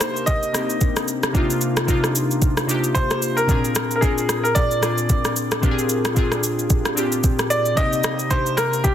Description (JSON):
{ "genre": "amapiano", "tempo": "112 BPM", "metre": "4/4", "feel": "swing 58% on 16ths", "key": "C minor", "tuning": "A4 = 440 Hz", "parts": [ { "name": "clear grand piano", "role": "melody", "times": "0.0-8.9 s", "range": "G4 to Eb5", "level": "-22 LUFS", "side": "equal", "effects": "ping-pong delay" }, { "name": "glassy digital keys", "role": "accompaniment", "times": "0.0-8.9 s", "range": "Bb2 to Bb4", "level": "-22 LUFS", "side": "left 1 dB", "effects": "chorus" }, { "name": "smooth R&B drum kit", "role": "drums", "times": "0.0-8.9 s", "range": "kick drum, rim click, shaker", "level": "-21 LUFS", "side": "equal", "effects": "soft clipping on snare" } ], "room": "light reverb, digital ambience", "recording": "dense, heavily limited modern master", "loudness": "-18 LUFS", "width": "side -10 dB against mid", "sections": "0.0-8.9 A section", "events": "none", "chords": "0.0 Cm9; 3.5 Bb7; 7.8 Cm9", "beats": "0.27 0.81 | 1.35 1.88 2.42 2.95 | 3.49 4.02 4.56 5.10 | 5.63 6.17 6.70 7.24 | 7.77 8.31 8.85" }